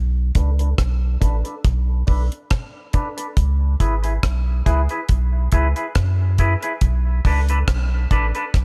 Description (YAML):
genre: dub reggae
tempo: 70 BPM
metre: 4/4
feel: swing 55% on 16ths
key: B dorian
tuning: A4 = 440 Hz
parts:
  - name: soft dub sub bass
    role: bass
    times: 0.0-8.6 s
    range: G#1 to F#2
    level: -21 LUFS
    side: equal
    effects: none
  - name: deep reggae drum kit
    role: drums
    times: 0.3-8.6 s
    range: hi-hat, kick drum, rim click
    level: -22 LUFS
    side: equal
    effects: none
  - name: clean electric guitar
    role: accompaniment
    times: 0.4-8.4 s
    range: D4 to B4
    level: -29 LUFS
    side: equal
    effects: warbly pitch drift, low-pass filter, dub echo
room: little or no reverb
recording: none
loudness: -20 LUFS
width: mono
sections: 0.0-8.6 A section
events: filter sweep on clean electric guitar 0.0-8.6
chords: 0.0 Bm7; 3.4 C#m7; 6.8 Bm7